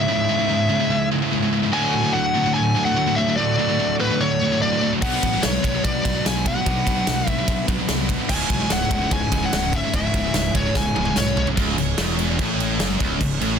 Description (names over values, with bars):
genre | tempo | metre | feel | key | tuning
heavy metal | 146 BPM | 4/4 | straight | C# phrygian | A4 = 444 Hz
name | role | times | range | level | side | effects
smooth overdriven lead guitar | melody | 0.0-11.5 s | B4 to G#5 | -24 LUFS | left 1 dB | digital delay
pipe organ, full organ | sustained chords | 0.0-13.6 s | C#3 to C#5 | -33 LUFS | left 2 dB | none
distorted electric guitar | riff | 0.0-13.6 s | C#2 to B4 | -26 LUFS | equal | distortion
high-gain distorted guitar | riff | 0.0-13.6 s | C#2 to B3 | -26 LUFS | right 9 dB | distortion
scooped high-gain guitar | riff | 0.0-13.6 s | C#2 to B3 | -27 LUFS | left 11 dB | distortion
fuzz fingered electric bass | bass | 5.0-13.6 s | C#1 to B#1 | -27 LUFS | equal | overdrive
big rock drum kit | drums | 5.0-13.5 s | crash cymbal, kick drum, ride cymbal, snare drum, toms | -24 LUFS | equal | none
room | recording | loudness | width
light reverb | dense, heavily limited modern master | -18 LUFS | side -7 dB against mid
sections
0.0-11.6 A section; 11.6-13.6 B section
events
drum fill 10.8-11.6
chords
0.0 C#m; 1.7 D; 5.0 Bm; 8.3 C#m